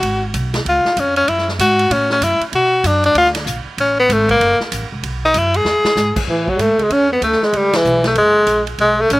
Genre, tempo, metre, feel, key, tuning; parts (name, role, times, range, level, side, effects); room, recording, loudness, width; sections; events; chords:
jazz, small-group swing and bop; 192 BPM; 4/4; swing 63% on 8ths; A major; A4 = 445 Hz
bright tenor saxophone; melody; 0.0-9.2 s; E3 to G#4; -14 LUFS; left 1 dB; slapback echo
upright bass; bass; 0.0-9.2 s; E1 to B2; -22 LUFS; right 1 dB
swinging big-band drum kit; drums; 0.0-9.2 s; crash cymbal, hi-hat, kick drum, ride cymbal, snare drum; -24 LUFS; right 1 dB
breathy trombone; second line; 6.3-9.2 s; E3 to C#4; -18 LUFS; right 2 dB
little or no reverb; recorded outdoors, with no room sound; -13 LUFS; side -19 dB against mid
0.0-6.3 A section; 6.3-9.2 B section
tenor saxophone solo 0.0-6.3; drum fill 5.6-6.0; band accent 7.7
0.0 G#m; 0.7 C#; 1.3 F#m; 2.5 B5; 3.1 Bb; 3.8 Amaj9; 4.4 F#7#9; 5.0 B5; 5.6 E; 6.3 Amaj7; 7.5 A9; 8.2 F#